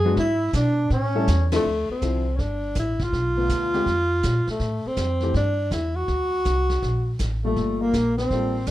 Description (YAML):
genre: jazz, small-group swing and bop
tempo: 162 BPM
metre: 4/4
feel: swing 65% on 8ths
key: D minor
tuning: A4 = 440 Hz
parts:
  - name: breathy tenor saxophone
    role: melody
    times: 0.0-8.7 s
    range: A3 to G#4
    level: -24 LUFS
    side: equal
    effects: none
  - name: brilliant trombone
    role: second line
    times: 0.0-1.5, 7.4-8.7 s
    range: A3 to G#4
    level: -28 LUFS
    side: right 4 dB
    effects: none
  - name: upright bass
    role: bass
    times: 0.0-8.7 s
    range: G1 to B2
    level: -24 LUFS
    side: equal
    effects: none
  - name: warm grand piano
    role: accompaniment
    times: 0.1-8.7 s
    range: Bb2 to A4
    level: -27 LUFS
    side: left 3 dB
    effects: none
  - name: vintage brush drum kit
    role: drums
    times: 0.2-8.7 s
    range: brushed snare drum, hi-hat, kick drum, ride cymbal, snare drum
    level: -33 LUFS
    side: right 1 dB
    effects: none
room: moderate club reverb, RT60 0.6 s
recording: dark, warm production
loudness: -20 LUFS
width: side -14 dB against mid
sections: 0.0-1.6 A section; 1.6-8.7 B section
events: band accent 1.5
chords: 0.2 G#dim; 0.9 A7; 1.6 Dm9; 3.1 Bm7b5; 3.9 Bb5; 4.6 Am7; 6.1 D7; 7.6 Gm9